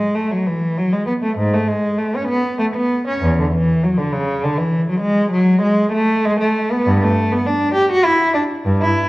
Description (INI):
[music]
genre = classical, baroque-style suite movement for unaccompanied cello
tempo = 99 BPM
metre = 3/4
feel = rubato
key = A major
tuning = A4 = 440 Hz
[part]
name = rich cello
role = solo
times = 0.0-9.1 s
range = E2 to G4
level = -15 LUFS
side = equal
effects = none
[sound]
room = wet recital hall reverb, RT60 1.7 s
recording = worn, warbling old tape, cassette tape, warbly pitch drift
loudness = -15 LUFS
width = side -20 dB against mid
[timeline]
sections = 0.0-9.1 A section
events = none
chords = none